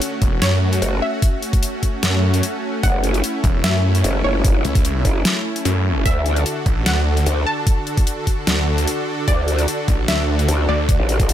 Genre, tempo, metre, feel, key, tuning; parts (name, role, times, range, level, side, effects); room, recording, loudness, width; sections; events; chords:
heavy wobble dubstep; 149 BPM; 4/4; swing 53% on 16ths, half-time; F# minor; A4 = 443 Hz
wide unison pluck; melody; 0.0-11.2 s; C#5 to A5; -26 LUFS; equal; dub echo
supersaw pad; sustained chords; 0.0-11.3 s; D3 to A4; -24 LUFS; equal; sidechain pumping
dubstep drum kit; drums; 0.0-11.3 s; hi-hat, snare drum; -23 LUFS; left 1 dB; overdrive
snarling distorted saw bass; bass; 0.2-11.0 s; E1 to F#2; -18 LUFS; equal; overdrive
electronic kick drum; drums; 0.2-11.3 s; -18 LUFS; equal
growl bass; bass; 0.8-11.3 s; F#1 to D2; -19 LUFS; equal; chorus, overdrive
digital ambience; -16 LUFS; side -11 dB against mid
0.0-11.3 A section
0.0 F#m; 6.1 D